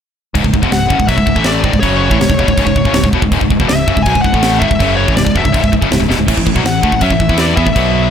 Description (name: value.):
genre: heavy metal.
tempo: 162 BPM.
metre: 4/4.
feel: straight.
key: C# phrygian.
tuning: A4 = 440 Hz.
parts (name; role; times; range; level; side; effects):
distorted electric guitar; riff; 0.3-8.1 s; C#2 to E4; -18 LUFS; right 14 dB; distortion.
tight distorted guitar; riff; 0.3-8.1 s; C#2 to E4; -16 LUFS; left 11 dB; distortion.
growling fingered electric bass; bass; 0.3-8.1 s; C#1 to F#2; -17 LUFS; right 1 dB; overdrive.
tight metal drum kit; drums; 0.4-7.8 s; china cymbal, crash cymbal, kick drum, snare drum; -16 LUFS; right 1 dB; none.
smooth overdriven lead guitar; melody; 0.7-8.1 s; C#5 to G#5; -17 LUFS; left 3 dB; ping-pong delay.
room: studio reverb.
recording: none.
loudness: -10 LUFS.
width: side -8 dB against mid.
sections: 0.4-8.1 A section.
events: drum fill 6.1.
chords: 0.4 C#m; 6.3 A5.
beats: | 0.35 0.72 1.09 1.46 | 1.83 2.20 2.57 2.94 | 3.31 3.69 4.05 4.43 | 4.80 5.17 5.54 5.91 | 6.28 6.65 7.02 7.39 | 7.76.